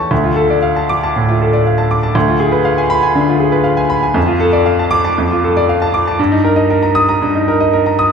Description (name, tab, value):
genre	classical, virtuoso piano study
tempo	118 BPM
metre	4/4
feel	rubato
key	D minor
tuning	A4 = 440 Hz
part	bright baby grand piano	solo	0.0-8.1 s	D2 to Eb6	-11 LUFS	equal	none
room	wet recital hall reverb, RT60 1.6 s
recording	heard from further back in the room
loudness	-11 LUFS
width	side -6 dB against mid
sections	0.0-8.1 A section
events	none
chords	0.1 Dm; 2.1 Ddim7; 4.2 Dm/F; 6.2 Eb/G